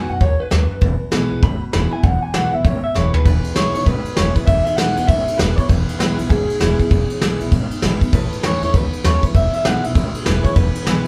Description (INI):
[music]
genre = rockabilly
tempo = 197 BPM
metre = 4/4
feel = swing 62% on 8ths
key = E major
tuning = A4 = 440 Hz
[part]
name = electric guitar through a small old amp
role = melody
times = 0.0-11.1 s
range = G#4 to B5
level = -25 LUFS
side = equal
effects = none
[part]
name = picked steel-string acoustic guitar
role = accompaniment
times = 0.0-11.1 s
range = E2 to F#4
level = -26 LUFS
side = equal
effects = none
[part]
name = upright bass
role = bass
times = 0.0-11.0 s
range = E1 to F#2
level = -24 LUFS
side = equal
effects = none
[part]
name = soft brush drum kit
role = drums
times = 0.2-11.1 s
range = hi-hat, kick drum, ride cymbal, snare drum, toms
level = -20 LUFS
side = equal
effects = none
[sound]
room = moderate studio reverb, RT60 0.6 s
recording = band playing live in one room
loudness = -17 LUFS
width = mono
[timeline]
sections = 0.0-3.3 A section; 3.3-11.1 B section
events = clean electric guitar solo 0.0-3.3; drum fill 3.0-3.3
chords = 0.0 B; 0.8 E; 8.1 A; 9.3 E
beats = 0.21 0.52 | 0.82 1.13 1.43 1.74 | 2.04 2.34 2.65 2.95 | 3.26 3.56 3.87 4.17 | 4.48 4.78 5.09 5.39 | 5.70 6.00 6.31 6.61 | 6.92 7.22 7.52 7.83 | 8.13 8.44 8.74 9.04 | 9.35 9.65 9.96 10.26 | 10.56 10.87